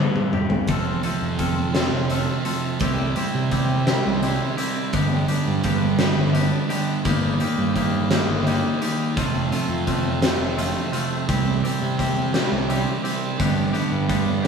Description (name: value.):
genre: quiet-loud alternative rock.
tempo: 57 BPM (dotted quarters).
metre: 6/8.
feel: straight.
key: unclear.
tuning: A4 = 440 Hz.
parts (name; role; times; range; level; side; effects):
twangy electric guitar; arpeggios; 0.0-14.5 s; G2 to A4; -28 LUFS; left 5 dB; none.
overdriven semi-hollow guitar; riff; 0.0-0.7 s; G2 to G3; -24 LUFS; left 2 dB; spring reverb.
big rock drum kit; drums; 0.2-14.5 s; hi-hat, kick drum, snare drum, toms; -25 LUFS; left 1 dB; none.
thick fuzz guitar; riff; 0.7-14.5 s; F2 to Eb4; -24 LUFS; right 5 dB; distortion.
fuzz fingered electric bass; bass; 0.7-14.5 s; F1 to C3; -25 LUFS; equal; overdrive.
room: moderate stone room reverb, RT60 1.1 s.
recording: band playing live in one room, studio ambience.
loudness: -19 LUFS.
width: side -6 dB against mid.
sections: 0.7-14.5 A section.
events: drum fill 0.0-0.7.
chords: 0.0 G; 0.7 F; 2.8 C; 4.9 G; 7.1 Eb/G; 9.2 F; 11.3 C; 13.4 G.